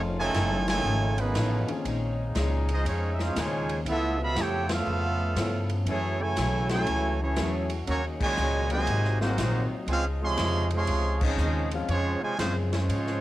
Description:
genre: jazz, big band swing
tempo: 120 BPM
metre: 4/4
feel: swing 66% on 8ths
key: Db major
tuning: A4 = 438 Hz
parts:
  - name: picked steel-string acoustic guitar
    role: accompaniment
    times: 0.0-13.2 s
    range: Ab2 to A4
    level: -38 LUFS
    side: left 4 dB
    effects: none
  - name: warm concert grand piano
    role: accompaniment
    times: 0.0-12.7 s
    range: Eb3 to F5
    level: -35 LUFS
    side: left 4 dB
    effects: none
  - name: clear trombone section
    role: sustained chords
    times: 0.0-13.2 s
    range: C3 to Gb4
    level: -38 LUFS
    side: left 1 dB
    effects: none
  - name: upright bass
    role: bass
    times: 0.0-13.2 s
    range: F1 to Ab2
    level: -28 LUFS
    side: equal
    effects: none
  - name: bright trumpet section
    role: melody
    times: 0.2-13.2 s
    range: Ab3 to C6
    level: -30 LUFS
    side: right 1 dB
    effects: cassette tape
  - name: clear trombone section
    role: second line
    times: 0.2-13.2 s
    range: Bb2 to G4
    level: -32 LUFS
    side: right 3 dB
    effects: none
  - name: swinging big-band drum kit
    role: drums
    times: 0.3-13.2 s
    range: crash cymbal, hi-hat, kick drum, ride cymbal, snare drum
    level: -35 LUFS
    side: left 1 dB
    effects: none
room: moderate booth ambience, RT60 0.2 s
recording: home recording on cassette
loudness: -24 LUFS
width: side -15 dB against mid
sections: 0.0-13.2 A section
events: band accent 0.6, 4.6, 8.1, 11.1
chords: 0.0 F7alt; 1.9 Bbm11; 3.9 Db7alt; 5.9 Gbm9; 7.9 Ebm7; 8.9 Ab13; 9.9 Dbmaj7

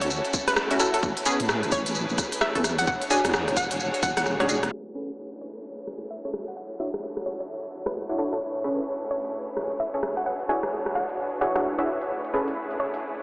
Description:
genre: UK garage, two-step garage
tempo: 130 BPM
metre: 4/4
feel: swing 62% on 16ths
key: A major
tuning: A4 = 441 Hz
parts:
  - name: hollow square pluck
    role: melody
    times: 0.0-13.0 s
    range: A4 to G#5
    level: -30 LUFS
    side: equal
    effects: chorus, analog delay
  - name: warm symphonic violin section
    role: sustained chords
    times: 0.0-13.2 s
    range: A3 to C#5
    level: -33 LUFS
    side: equal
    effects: sidechain pumping, low-pass filter
  - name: deep soft wobble bass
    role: bass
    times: 0.0-4.7 s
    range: E1 to A2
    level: -30 LUFS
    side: equal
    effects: chorus, sidechain pumping
  - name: garage drum kit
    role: drums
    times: 0.0-13.0 s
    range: hi-hat, rim click, shaker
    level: -28 LUFS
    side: equal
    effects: none
  - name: electronic kick drum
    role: drums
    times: 0.3-4.1 s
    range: none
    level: -32 LUFS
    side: equal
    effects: none
  - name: punchy chord stab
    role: stabs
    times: 0.7-12.5 s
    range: B3 to E5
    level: -30 LUFS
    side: equal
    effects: chorus, analog delay
  - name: downlifter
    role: sound effects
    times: 5.1-8.4 s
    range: none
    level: -53 LUFS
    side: equal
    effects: none
room: wet huge ambient reverb, RT60 7.9 s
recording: dreamy mix soaked in reverb, low-pass filter, small speaker sound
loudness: -24 LUFS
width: side -26 dB against mid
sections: 0.0-4.7 A section; 4.7-13.2 B section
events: drum fill 4.3-4.7; band accent 4.6; filter sweep on violin section 4.7-13.2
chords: 0.0 Dmaj9; 1.0 Amaj9; 2.6 E13; 4.7 Amaj9; 6.3 Dmaj9; 8.4 Amaj9; 10.0 E13; 12.1 Amaj9

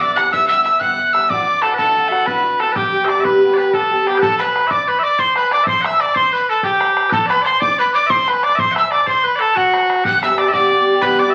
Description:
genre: celtic folk, Celtic slip jig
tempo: 124 BPM (dotted quarters)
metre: 9/8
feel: straight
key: G major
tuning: A4 = 439 Hz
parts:
  - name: breathy bright mid whistle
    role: melody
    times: 0.0-11.3 s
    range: E5 to F#6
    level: -19 LUFS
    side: equal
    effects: none
  - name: loud bright bagpipes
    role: second line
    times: 0.0-11.3 s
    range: F#4 to F#5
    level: -20 LUFS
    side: equal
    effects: none
  - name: Irish bouzouki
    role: accompaniment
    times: 0.0-4.2, 10.0-11.3 s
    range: G2 to G4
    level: -21 LUFS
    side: equal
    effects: none
  - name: bodhran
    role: percussion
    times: 0.0-11.1 s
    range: none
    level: -29 LUFS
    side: equal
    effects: none
room: wet club reverb, RT60 0.9 s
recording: very old 78 rpm record, vinyl crackle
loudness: -15 LUFS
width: mono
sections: 0.0-4.2 A section; 4.2-11.3 B section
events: none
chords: 0.0 Em7; 1.3 Dadd9; 2.8 G; 4.2 N.C.; 10.0 G

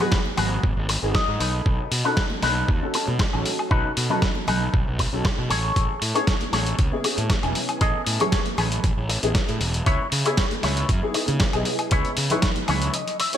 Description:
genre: nu-disco, nu disco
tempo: 117 BPM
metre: 4/4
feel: straight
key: C# minor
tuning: A4 = 441 Hz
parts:
  - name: dark grand piano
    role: accompaniment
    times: 0.0-13.4 s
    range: B3 to G#5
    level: -29 LUFS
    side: left 1 dB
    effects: analog chorus, digital delay
  - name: electric guitar with an envelope filter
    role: riff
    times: 0.0-13.4 s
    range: D#4 to E5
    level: -27 LUFS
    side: left 2 dB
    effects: wide subtle chorus, digital delay
  - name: congas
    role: percussion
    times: 0.0-12.8 s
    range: none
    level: -34 LUFS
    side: right 3 dB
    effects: none
  - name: dusty soul sampler-style drum kit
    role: drums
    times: 0.1-13.4 s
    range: hi-hat, snare drum, woodblock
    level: -27 LUFS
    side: left 1 dB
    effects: overdrive, gated reverb
  - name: electronic kick drum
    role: drums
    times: 0.1-12.5 s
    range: none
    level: -23 LUFS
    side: equal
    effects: overdrive
  - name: fuzz fingered electric bass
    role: bass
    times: 0.4-12.9 s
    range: E1 to C#3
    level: -26 LUFS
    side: equal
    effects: overdrive
room: light reverb, digital ambience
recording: bright 1980s-style digital production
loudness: -20 LUFS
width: side -10 dB against mid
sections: 0.0-13.4 A section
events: clean electric guitar fill 0.9-1.7, 12.4-13.4; kick drops out 12.9-13.4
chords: 0.0 G#m7; 1.4 B7; 5.5 Amaj7; 9.9 C#m7

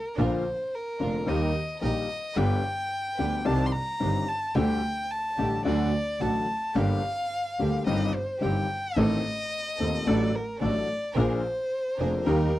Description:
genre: tango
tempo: 109 BPM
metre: 4/4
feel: rubato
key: G minor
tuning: A4 = 440 Hz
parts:
  - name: warm violin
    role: second line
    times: 0.0-12.6 s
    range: Bb4 to C6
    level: -30 LUFS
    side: left 1 dB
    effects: none
  - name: clear upright piano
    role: accompaniment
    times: 0.2-12.5 s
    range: Eb1 to A4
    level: -27 LUFS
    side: left 3 dB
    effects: none
  - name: clear studio string section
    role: stabs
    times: 0.2-12.5 s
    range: A3 to C5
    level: -37 LUFS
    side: right 7 dB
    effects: none
  - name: clear double bass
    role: bass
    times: 0.2-12.5 s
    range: F1 to Eb2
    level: -29 LUFS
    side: right 2 dB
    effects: none
room: light reverb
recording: dry, close 1970s-style studio recording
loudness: -25 LUFS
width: side -15 dB against mid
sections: 0.0-12.6 A section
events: violin solo 0.0-12.6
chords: 0.2 Bb; 1.3 Eb; 2.4 G; 3.5 Cmadd9; 4.6 Dsus4; 5.7 D; 6.8 Gm; 7.9 Cm/G; 9.0 Adim; 10.1 D/A; 11.2 Bb7

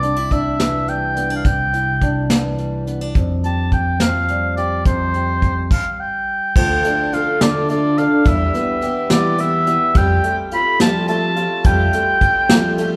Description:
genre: indie folk with a building arrangement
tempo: 70 BPM (dotted quarters)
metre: 6/8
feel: straight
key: unclear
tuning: A4 = 440 Hz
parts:
  - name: warm oboe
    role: melody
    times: 0.0-13.0 s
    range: C5 to B5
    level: -21 LUFS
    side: equal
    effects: none
  - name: fingerpicked acoustic archtop guitar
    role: accompaniment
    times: 0.0-10.0 s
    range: D2 to G4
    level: -26 LUFS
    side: equal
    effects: none
  - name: picked electric bass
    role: bass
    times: 0.0-13.0 s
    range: C2 to F3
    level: -24 LUFS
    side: equal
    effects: none
  - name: vintage brush drum kit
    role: drums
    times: 0.0-12.9 s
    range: crash cymbal, hi-hat, kick drum, snare drum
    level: -20 LUFS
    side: equal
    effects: none
  - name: picked twelve-string acoustic guitar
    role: accompaniment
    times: 6.6-13.0 s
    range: D3 to A4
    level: -28 LUFS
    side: equal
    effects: none
  - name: dark upright piano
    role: arpeggios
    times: 6.6-13.0 s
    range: F3 to F4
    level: -28 LUFS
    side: equal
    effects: none
room: moderate large studio reverb, RT60 1.5 s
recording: band playing live in one room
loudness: -17 LUFS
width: mono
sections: 0.0-6.6 A section; 6.6-13.0 B section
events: stop 5.7-6.6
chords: 0.0 Cadd9; 3.2 Fsus2; 6.6 Dm; 8.3 Em; 10.0 Fadd9

